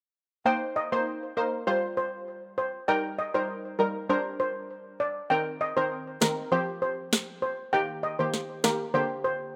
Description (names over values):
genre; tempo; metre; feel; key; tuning
dancehall; 99 BPM; 4/4; straight; C minor; A4 = 440 Hz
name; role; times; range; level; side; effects
steel pan; melody; 0.5-9.4 s; Bb4 to G5; -31 LUFS; equal; delay
punchy chord stab; accompaniment; 0.5-9.6 s; D3 to C5; -34 LUFS; equal; chorus
electronic snare drum and rim click; drums; 6.2-8.8 s; none; -28 LUFS; equal; none
room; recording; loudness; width
light reverb; rough home demo mix; -29 LUFS; mono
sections
0.5-9.6 A section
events
none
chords
0.5 Cm7; 1.7 Fsus2; 2.9 Eb; 4.1 Gm; 5.3 Cm7; 6.5 Fsus2; 7.7 Eb; 8.9 Gm